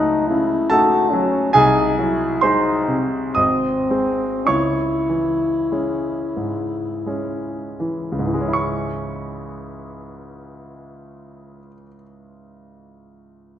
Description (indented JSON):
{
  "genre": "classical, romantic duo for French horn and grand piano",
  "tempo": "39-72 BPM",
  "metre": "3/4",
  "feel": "rubato",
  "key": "C# minor",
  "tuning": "A4 = 439 Hz",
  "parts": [
    { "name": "warm French horn", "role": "melody", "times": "0.0-7.8 s", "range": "B#3 to F#4", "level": "-21 LUFS", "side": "left 2 dB", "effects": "none" },
    { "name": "clear concert grand piano", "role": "accompaniment", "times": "0.0-13.6 s", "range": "G#1 to F#6", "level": "-20 LUFS", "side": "right 1 dB", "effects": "none" }
  ],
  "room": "wet scoring stage reverb, RT60 2.0 s",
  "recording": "none",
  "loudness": "-17 LUFS",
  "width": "side -10 dB against mid",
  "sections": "0.0-8.6 A section; 8.6-12.8 B section",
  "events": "slowing down 0.3-8.6",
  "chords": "0.0 D#m7b5/C#; 1.5 G#7/B#; 3.4 G#; 4.5 C#m",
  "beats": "0.71 | 1.54 2.42 3.36 | 4.47 5.71 7.05 | 8.55 10.01 11.43"
}